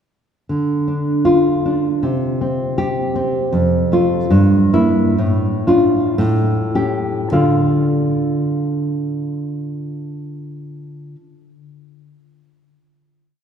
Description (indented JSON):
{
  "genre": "romantic piece for solo classical guitar",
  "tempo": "51-80 BPM",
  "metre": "2/4",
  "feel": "rubato",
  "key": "D minor",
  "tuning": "A4 = 440 Hz",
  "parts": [
    { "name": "nylon-string guitar", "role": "solo", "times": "0.5-11.2 s", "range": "F2 to F5", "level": "-15 LUFS", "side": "equal", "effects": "none" }
  ],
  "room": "wet church reverb, RT60 3.3 s",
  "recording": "recorded in a church or concert hall",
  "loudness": "-15 LUFS",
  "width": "side -8 dB against mid",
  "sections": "0.5-7.3 A section; 7.3-11.9 final chord",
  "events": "slowing down 2.8-7.3",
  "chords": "0.5 Dm; 2.0 C5; 3.5 F; 4.3 Edim/G; 5.2 Dm/A; 6.2 A7; 7.3 Dm",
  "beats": "| 0.48 1.26 | 2.03 2.78 | 3.54 4.32 | 5.19 6.18 | 7.32 8.46 | 9.62 10.76"
}